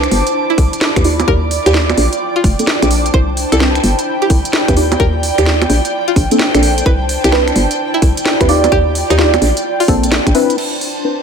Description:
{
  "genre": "UK garage, two-step garage",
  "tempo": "129 BPM",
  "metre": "4/4",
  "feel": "swing 65% on 16ths",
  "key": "C major",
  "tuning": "A4 = 440 Hz",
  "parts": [
    { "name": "airy breathy pad", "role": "sustained chords", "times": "0.0-11.2 s", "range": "G5 to D6", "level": "-24 LUFS", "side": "equal", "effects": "chorus, sidechain pumping" },
    { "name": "deep mellow chord stab", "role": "stabs", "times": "0.0-11.2 s", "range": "Bb3 to D5", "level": "-17 LUFS", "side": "right 1 dB", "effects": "chorus, ping-pong delay" },
    { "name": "hollow knocking FM bass", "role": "bass", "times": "0.0-10.3 s", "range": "F1 to Eb2", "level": "-14 LUFS", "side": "equal", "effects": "none" },
    { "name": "garage drum kit", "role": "drums", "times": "0.0-10.9 s", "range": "bongos, crash cymbal, finger snaps, hi-hat, snare drum", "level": "-18 LUFS", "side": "right 1 dB", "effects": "none" },
    { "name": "ethereal airy pad", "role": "texture", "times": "0.0-11.2 s", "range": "D4 to B5", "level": "-19 LUFS", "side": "right 2 dB", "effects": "ensemble chorus, built-in reverb, sidechain pumping" },
    { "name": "string-like resonator pluck", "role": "melody", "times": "0.5-10.0 s", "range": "Eb4 to C5", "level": "-20 LUFS", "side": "equal", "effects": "chorus, digital delay" },
    { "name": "electronic kick drum", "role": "drums", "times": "0.6-10.3 s", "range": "none", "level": "-16 LUFS", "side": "equal", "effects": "none" }
  ],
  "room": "light reverb, digital ambience",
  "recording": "none",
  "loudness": "-11 LUFS",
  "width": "side -6 dB against mid",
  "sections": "0.0-10.6 A section",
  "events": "filter sweep on synth stab 0.0-10.6",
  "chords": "0.0 Cmaj9; 1.0 Ebmaj9; 2.0 Bbmaj9; 3.1 Cmaj9; 4.8 Ebmaj9; 5.7 Bbmaj9; 6.9 Cmaj9; 8.5 Ebmaj9; 9.4 Bbmaj9; 10.6 Cmaj9",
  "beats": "0.35 0.81 | 1.28 1.74 2.21 2.67 | 3.14 3.60 4.07 4.53 | 5.00 5.46 5.93 6.39 | 6.86 7.32 7.79 8.25 | 8.72 9.19 9.65 10.12 | 10.58 11.04"
}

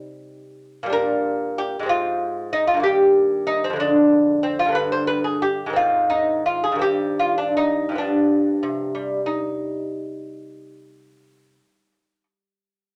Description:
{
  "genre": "classical, baroque-style dance for lute",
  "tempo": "45-64 BPM (dotted quarters)",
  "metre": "6/8",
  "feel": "rubato",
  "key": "C minor",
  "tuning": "A4 = 442 Hz",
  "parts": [
    { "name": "lute", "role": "solo", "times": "0.0-12.2 s", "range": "F2 to C5", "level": "-21 LUFS", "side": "equal", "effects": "none" }
  ],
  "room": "wet studio reverb, RT60 0.6 s",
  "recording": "none",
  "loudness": "-21 LUFS",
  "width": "mono",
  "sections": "0.0-9.3 A section; 9.3-13.0 B section",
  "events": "slowing down 3.8-9.3",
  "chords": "0.0 Cm; 0.9 Gm/Bb; 1.9 Fm/Ab; 2.8 Eb/G; 3.8 Ddim/F; 4.8 G; 5.8 Ab; 6.8 Cm/G; 8.0 G7; 9.3 Cm",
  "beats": "| 0.93 1.89 | 2.83 3.79 | 4.76 5.76 | 6.83 7.97 | 9.27 10.55 | 11.83"
}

